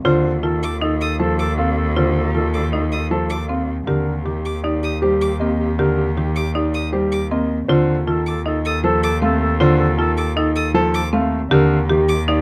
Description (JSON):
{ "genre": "classical, minimalist pattern music", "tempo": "157 BPM", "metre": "5/4", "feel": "straight", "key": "unclear", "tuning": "A4 = 440 Hz", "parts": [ { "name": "warm concert grand piano", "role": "melody", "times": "0.0-12.4 s", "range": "G4 to F5", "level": "-27 LUFS", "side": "equal", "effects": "none" }, { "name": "warm clarinet", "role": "second line", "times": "0.1-12.4 s", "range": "G4 to A4", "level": "-29 LUFS", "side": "equal", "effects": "none" }, { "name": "warm concert grand piano", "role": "accompaniment", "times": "0.1-12.1 s", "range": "D3 to Bb3", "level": "-23 LUFS", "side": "equal", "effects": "none" }, { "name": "buzzing marimba with hard mallets", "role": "arpeggios", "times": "0.1-12.4 s", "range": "C4 to C5", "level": "-26 LUFS", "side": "equal", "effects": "none" }, { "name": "rich cello", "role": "bass", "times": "0.1-12.4 s", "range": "Eb2", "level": "-24 LUFS", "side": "equal", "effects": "none" }, { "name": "clear violin", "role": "arpeggios", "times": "0.6-12.2 s", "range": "D6 to Eb6", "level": "-30 LUFS", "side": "equal", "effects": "none" } ], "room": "light reverb", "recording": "close, detailed microphones", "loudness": "-19 LUFS", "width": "mono", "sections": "0.0-12.4 A section", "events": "none", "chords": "0.1 F7/Eb; 3.9 Ebmaj7; 7.7 F7/Eb; 11.5 Ebmaj7", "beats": "| 0.06 0.44 0.82 1.20 1.58 | 1.97 2.35 2.73 3.11 3.49 | 3.88 4.26 4.64 5.02 5.41 | 5.79 6.17 6.55 6.93 7.32 | 7.70 8.08 8.46 8.84 9.23 | 9.61 9.99 10.37 10.76 11.14 | 11.52 11.90 12.28" }